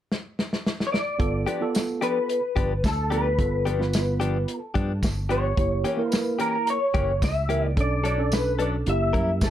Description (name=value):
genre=straight-eighth soul blues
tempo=109 BPM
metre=4/4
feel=straight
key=unclear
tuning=A4 = 439 Hz
part: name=warm soul drum kit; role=drums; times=0.1-9.5 s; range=hi-hat, kick drum, snare drum, tambourine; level=-26 LUFS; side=equal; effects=none
part: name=electric guitar through a small old amp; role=melody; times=0.9-9.5 s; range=A4 to E5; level=-26 LUFS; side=left 1 dB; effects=ensemble chorus
part: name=tine electric piano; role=accompaniment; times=1.2-9.5 s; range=A#3 to B4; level=-29 LUFS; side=right 4 dB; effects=none
part: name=fingered electric bass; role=bass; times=1.2-9.5 s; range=F#1 to G2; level=-26 LUFS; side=equal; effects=none
part: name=direct-recorded clean electric guitar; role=stabs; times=1.5-9.3 s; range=E3 to A#4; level=-30 LUFS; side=left 5 dB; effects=none
room=light reverb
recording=none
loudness=-22 LUFS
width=side -11 dB against mid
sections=0.0-1.2 A section; 1.2-9.5 B section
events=drum fill 0.1-1.2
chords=0.0 N.C.; 1.2 G7; 5.6 F#7b9; 7.8 Bm9; 8.9 F#7b9